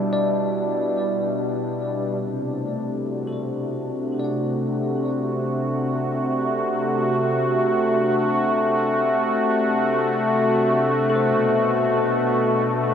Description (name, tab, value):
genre	ambient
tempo	free time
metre	none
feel	none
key	D mixolydian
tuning	A4 = 440 Hz
part	warm analog pad	sustained chords	0.0-12.9 s	B2 to F#4	-20 LUFS	equal	chorus
part	bell-like tine electric piano	arpeggios	0.0-12.9 s	A4 to F#5	-30 LUFS	left 2 dB	lush chorus, diffuse ambient delay
room	wet huge ambient reverb, RT60 8.2 s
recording	dreamy mix soaked in reverb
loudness	-20 LUFS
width	side -8 dB against mid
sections	0.0-2.2 A section; 2.2-12.9 B section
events	fade-in on tine electric piano 2.2-12.9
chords	0.0 Em7; 2.2 D7; 11.3 Bm7